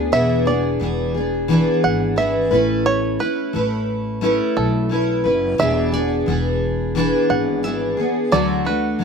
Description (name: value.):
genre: acoustic pop.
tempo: 88 BPM.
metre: 4/4.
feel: swing 55% on 16ths.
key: E mixolydian.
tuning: A4 = 437 Hz.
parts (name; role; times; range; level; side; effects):
picked steel-string acoustic guitar; accompaniment; 0.0-9.0 s; D3 to B4; -18 LUFS; left 1 dB; double-tracked left and right.
upright bass; bass; 0.0-9.0 s; E1 to D2; -25 LUFS; equal; none.
bluegrass banjo; arpeggios; 0.1-9.0 s; A4 to F#5; -22 LUFS; right 4 dB; slapback echo.
room: light reverb.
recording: recorded outdoors, with no room sound.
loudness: -17 LUFS.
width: side -6 dB against mid.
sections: 0.1-9.0 A section.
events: none.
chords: 0.1 E7; 2.5 Aadd9; 5.6 E7; 8.3 D.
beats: | 0.13 0.81 1.50 2.18 | 2.86 3.54 4.22 4.91 | 5.59 6.27 6.96 7.64 | 8.32 9.00.